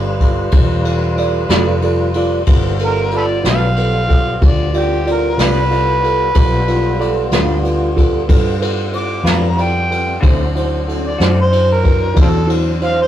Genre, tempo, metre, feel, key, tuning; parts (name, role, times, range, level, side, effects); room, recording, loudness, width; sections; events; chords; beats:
slow blues; 62 BPM (dotted quarters); 12/8; straight; G mixolydian; A4 = 438 Hz
tine electric piano; accompaniment; 0.0-13.1 s; E4 to D5; -20 LUFS; right 2 dB; phaser
tonewheel organ; sustained chords; 0.0-13.1 s; F#3 to C5; -24 LUFS; right 1 dB; slow rotary speaker, overdrive
vintage muted fingered electric bass; bass; 0.0-13.1 s; E1 to G2; -18 LUFS; equal
jazz brush drum kit; drums; 0.2-13.0 s; kick drum, ride cymbal, snare drum; -17 LUFS; equal
electric guitar through a small old amp; accompaniment; 1.5-11.4 s; D3 to B4; -23 LUFS; left 2 dB; harmonic tremolo
overdriven harmonica; melody; 2.8-13.1 s; C4 to D6; -18 LUFS; equal
moderate studio reverb, RT60 0.6 s; rough rehearsal-room recording, tube saturation; -12 LUFS; side -11 dB against mid
0.0-13.1 A section
0.0 G7; 10.2 D7
0.53 1.50 | 2.47 3.44 4.42 5.38 | 6.36 7.33 8.29 9.26 | 10.23 11.20 12.17